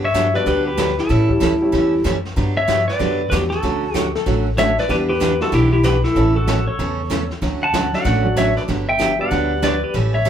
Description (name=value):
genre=country, western swing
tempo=190 BPM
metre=4/4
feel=swing 64% on 8ths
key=unclear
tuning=A4 = 440 Hz
part: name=pedal steel guitar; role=melody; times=0.0-10.3 s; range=E4 to A5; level=-19 LUFS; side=left 1 dB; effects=none
part: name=picked steel-string acoustic guitar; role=accompaniment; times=0.0-10.3 s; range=C#3 to A4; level=-23 LUFS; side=right 4 dB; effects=none
part: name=upright bass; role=bass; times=0.0-10.3 s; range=G1 to A2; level=-21 LUFS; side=equal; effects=none
part: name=jazz brush drum kit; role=drums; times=0.1-10.3 s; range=brushed snare drum, hi-hat, kick drum, snare drum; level=-27 LUFS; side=left 1 dB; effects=none
part: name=dark upright piano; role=accompaniment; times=0.3-9.6 s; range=E3 to A4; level=-25 LUFS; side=left 2 dB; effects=none
part: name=clean lap steel guitar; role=second line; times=3.9-4.5 s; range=A4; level=-25 LUFS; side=left 8 dB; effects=none
room=wet small room reverb, RT60 0.5 s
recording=band playing live in one room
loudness=-16 LUFS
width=side -9 dB against mid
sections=0.0-10.3 A section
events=none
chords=0.0 Gmaj7; 1.1 A7; 2.4 Gmaj7; 3.6 Dmaj7; 4.9 Em7; 6.2 A; 7.4 Dmaj7; 8.7 Gmaj7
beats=0.15 0.46 0.78 | 1.09 1.41 1.73 2.04 | 2.36 2.68 2.99 3.31 | 3.63 3.94 4.26 4.58 | 4.89 5.21 5.52 5.84 | 6.15 6.47 6.79 7.10 | 7.42 7.73 8.05 8.36 | 8.68 8.99 9.31 9.62 | 9.94 10.26